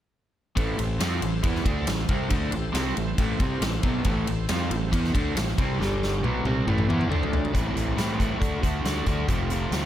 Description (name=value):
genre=classic rock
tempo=137 BPM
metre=4/4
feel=straight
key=A minor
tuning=A4 = 440 Hz
part: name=bright tonewheel organ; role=sustained chords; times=0.6-7.5 s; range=G3 to D5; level=-38 LUFS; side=equal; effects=slow rotary speaker, overdrive, chorus vibrato
part: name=crunchy overdriven guitar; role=riff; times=0.6-9.9 s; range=F2 to F#4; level=-27 LUFS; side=equal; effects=none
part: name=fuzz fingered electric bass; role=bass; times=0.6-9.9 s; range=F1 to A2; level=-29 LUFS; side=equal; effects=overdrive
part: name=big rock drum kit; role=drums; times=0.6-9.8 s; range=hi-hat, kick drum, ride cymbal, snare drum, toms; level=-27 LUFS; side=equal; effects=none
room=small room ambience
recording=none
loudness=-23 LUFS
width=side -12 dB against mid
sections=0.6-7.5 A section; 7.5-9.9 B section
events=drum fill 5.8-7.5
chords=0.6 Am; 5.8 G5; 6.2 Am; 7.1 D5; 7.5 Am; 8.4 D; 9.3 F